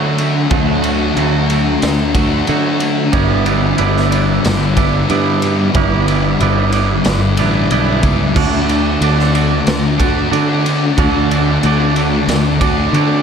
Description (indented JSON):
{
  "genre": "rock, shoegaze and dream pop",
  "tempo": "92 BPM",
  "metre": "4/4",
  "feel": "straight",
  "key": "D major",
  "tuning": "A4 = 440 Hz",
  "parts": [
    { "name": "clean electric guitar", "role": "riff", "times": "0.0-13.2 s", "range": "D3 to D5", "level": "-18 LUFS", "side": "right 9 dB", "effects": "reverse reverb" },
    { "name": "thick fuzz guitar", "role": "riff", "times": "0.0-13.2 s", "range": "G2 to D4", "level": "-16 LUFS", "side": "left 6 dB", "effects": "distortion, wide subtle chorus" },
    { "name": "picked electric bass", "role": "bass", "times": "0.0-13.2 s", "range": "G1 to D3", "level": "-18 LUFS", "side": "right 1 dB", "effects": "none" },
    { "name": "raw garage drum kit", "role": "drums", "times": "0.2-13.1 s", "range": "crash cymbal, kick drum, ride cymbal, snare drum", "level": "-20 LUFS", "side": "equal", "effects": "none" }
  ],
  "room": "moderate huge ambient reverb, RT60 6.0 s",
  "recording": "dreamy mix soaked in reverb",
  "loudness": "-12 LUFS",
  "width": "side -7 dB against mid",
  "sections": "0.0-13.2 A section",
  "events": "none",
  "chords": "0.0 D; 3.1 G6; 8.4 D"
}